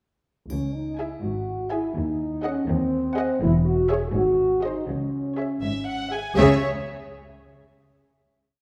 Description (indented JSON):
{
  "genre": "cinematic, playful, whimsical film cue",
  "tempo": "82 BPM (dotted quarters)",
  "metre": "6/8",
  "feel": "straight",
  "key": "C# minor",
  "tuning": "A4 = 440 Hz",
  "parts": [
    { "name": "dark French horn section", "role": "sustained chords", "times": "0.5-6.6 s", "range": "B#3 to G#4", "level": "-28 LUFS", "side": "equal", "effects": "none" },
    { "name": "warm studio cello section", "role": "bass", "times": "0.5-6.6 s", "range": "C#2 to C#3", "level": "-30 LUFS", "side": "equal", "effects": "none" },
    { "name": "warm studio double bass section", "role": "bass", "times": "0.5-6.6 s", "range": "E1 to D#2", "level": "-31 LUFS", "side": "equal", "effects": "none" },
    { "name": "triangle", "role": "percussion", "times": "0.5-1.4 s", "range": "none", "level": "-56 LUFS", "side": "equal", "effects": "none" },
    { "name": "warm studio violin section", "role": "melody", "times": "1.0-6.6 s", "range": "D#5 to G#5", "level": "-36 LUFS", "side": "equal", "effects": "none" },
    { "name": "warm studio violin section", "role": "second line", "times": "1.0-6.6 s", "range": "B#4 to G#5", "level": "-33 LUFS", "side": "equal", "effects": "none" },
    { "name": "rich studio viola section", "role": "accompaniment", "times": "1.0-6.6 s", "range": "G#4", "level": "-29 LUFS", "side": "equal", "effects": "none" }
  ],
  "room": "moderate scoring stage reverb, RT60 2.0 s",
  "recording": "none",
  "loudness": "-24 LUFS",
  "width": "mono",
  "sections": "0.5-6.4 A section; 6.4-7.8 final chord",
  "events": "none",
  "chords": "0.5 C#m; 2.0 G#7/D#; 3.4 C#m/E; 4.1 G#7; 4.9 C#m; 6.4 C#5",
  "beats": "| 0.50 1.24 | 1.96 2.69 | 3.41 4.14 | 4.88 5.62 | 6.37"
}